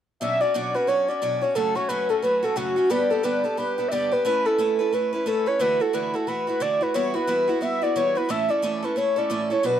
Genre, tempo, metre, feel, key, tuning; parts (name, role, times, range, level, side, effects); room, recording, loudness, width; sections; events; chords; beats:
celtic folk, Celtic hornpipe; 178 BPM; 4/4; swing 60% on 8ths; B minor; A4 = 440 Hz
mellow horn-like synth lead; melody; 0.2-9.8 s; F#4 to E5; -22 LUFS; equal; chorus
picked acoustic archtop guitar; accompaniment; 0.2-9.8 s; F#2 to B4; -27 LUFS; right 2 dB
moderate studio reverb, RT60 0.7 s; close, detailed microphones; -21 LUFS; side -10 dB against mid
0.2-9.8 A section
0.2 Bmadd9; 1.6 F#m; 2.9 G; 4.3 Aadd9; 5.6 Dadd9; 6.9 Emadd9; 8.3 A
| 0.21 0.54 0.88 1.22 | 1.55 1.89 2.23 2.57 | 2.90 3.24 3.58 3.92 | 4.25 4.59 4.92 5.26 | 5.60 5.94 6.27 6.61 | 6.95 7.28 7.62 7.96 | 8.29 8.63 8.97 9.30 | 9.64